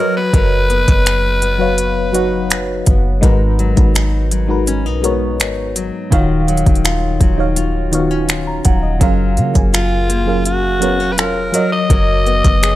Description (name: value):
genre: contemporary R&B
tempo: 83 BPM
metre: 4/4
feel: straight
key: unclear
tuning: A4 = 438 Hz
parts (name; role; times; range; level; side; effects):
- growling alto saxophone; melody; 0.0-2.8, 9.7-12.8 s; E#4 to D#5; -18 LUFS; equal; none
- FM electric piano with auto-pan; accompaniment; 0.0-12.8 s; D#3 to A#5; -19 LUFS; equal; phaser
- nylon-string guitar; arpeggios; 0.0-12.8 s; G#2 to A#4; -23 LUFS; left 6 dB; tape echo
- soft 808-style bass; bass; 0.3-12.8 s; D#1 to C#3; -17 LUFS; equal; none
- smooth R&B drum kit; drums; 0.3-12.8 s; finger snaps, hi-hat, kick drum; -15 LUFS; equal; overdrive
room: digital ambience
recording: none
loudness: -12 LUFS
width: side -15 dB against mid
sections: 0.0-12.8 A section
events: none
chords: 0.0 Bmaj7/F#; 3.2 G#m7; 6.1 D#m9; 9.0 F#maj7; 11.5 Bmaj7/F#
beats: | 0.34 1.06 1.78 2.50 | 3.23 3.95 4.67 5.40 | 6.12 6.84 7.57 8.29 | 9.01 9.73 10.46 11.18 | 11.90 12.63